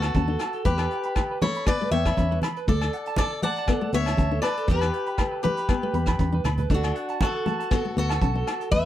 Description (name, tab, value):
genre	highlife guitar band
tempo	119 BPM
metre	4/4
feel	straight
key	D major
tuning	A4 = 440 Hz
part	picked swing-style acoustic guitar	melody	0.0-8.9 s	D4 to F#5	-28 LUFS	left 2 dB	none
part	nylon-string guitar	accompaniment	0.0-8.9 s	A3 to D4	-30 LUFS	left 6 dB	none
part	clean electric guitar	arpeggios	0.0-8.8 s	A4 to B5	-32 LUFS	right 8 dB	slapback echo
part	fingered electric bass	bass	0.0-8.9 s	B1 to E2	-26 LUFS	equal	none
part	vintage brush drum kit	drums	0.0-8.8 s	hi-hat, kick drum, rim click	-26 LUFS	equal	none
part	agogo bells	percussion	0.0-8.6 s	none	-36 LUFS	left 12 dB	none
part	congas	percussion	0.2-8.8 s	none	-30 LUFS	right 2 dB	none
room	little or no reverb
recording	none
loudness	-22 LUFS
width	side -12 dB against mid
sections	0.0-8.9 A section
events	drum fill 6.3-6.7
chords	0.0 D; 0.7 Em; 2.7 D; 4.7 Em; 6.7 D